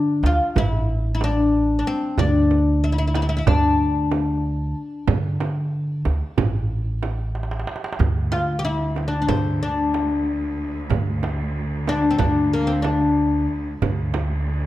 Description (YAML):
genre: Turkish makam ensemble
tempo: 185 BPM (eighths)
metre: 9/8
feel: straight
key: D makam ussak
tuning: A4 = 440 Hz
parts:
  - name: oud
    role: melody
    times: 0.0-13.9 s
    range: Bb3 to G4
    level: -21 LUFS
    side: left 3 dB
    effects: none
  - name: upright bass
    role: bass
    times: 0.0-14.7 s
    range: A1 to D3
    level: -23 LUFS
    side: right 1 dB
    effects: none
  - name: darbuka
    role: percussion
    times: 0.2-14.6 s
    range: none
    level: -26 LUFS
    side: right 2 dB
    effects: none
  - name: frame drum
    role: percussion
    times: 0.2-14.3 s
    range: none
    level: -27 LUFS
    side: right 7 dB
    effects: none
  - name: clear studio cello section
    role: drone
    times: 8.0-14.7 s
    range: D2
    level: -32 LUFS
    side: right 1 dB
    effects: none
room: light reverb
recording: none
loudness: -19 LUFS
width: side -15 dB against mid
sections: 0.0-8.0 A section; 8.0-14.7 B section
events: drum fill 7.3-8.0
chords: none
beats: 0.24 0.56 0.88 1.21 1.53 1.85 | 2.18 2.50 2.82 3.15 3.47 3.79 4.12 4.44 4.76 | 5.09 5.41 5.73 6.06 6.38 6.70 7.03 7.35 7.67 | 8.00 8.32 8.64 8.97 9.29 9.62 9.94 10.26 10.59 | 10.91 11.23 11.56 11.88 12.21 12.53 12.85 13.18 13.50 | 13.82 14.15 14.47